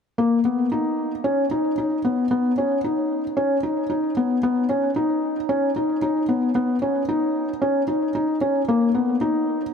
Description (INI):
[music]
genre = electronica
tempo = 113 BPM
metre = 4/4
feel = straight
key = unclear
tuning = A4 = 440 Hz
[part]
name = felt-muted upright piano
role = riff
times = 0.2-9.6 s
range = A#3 to D#4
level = -20 LUFS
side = left 1 dB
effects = ping-pong delay
[sound]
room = moderate huge ambient reverb, RT60 4.5 s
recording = none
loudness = -20 LUFS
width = side -6 dB against mid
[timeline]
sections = 0.2-9.7 A section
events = none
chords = none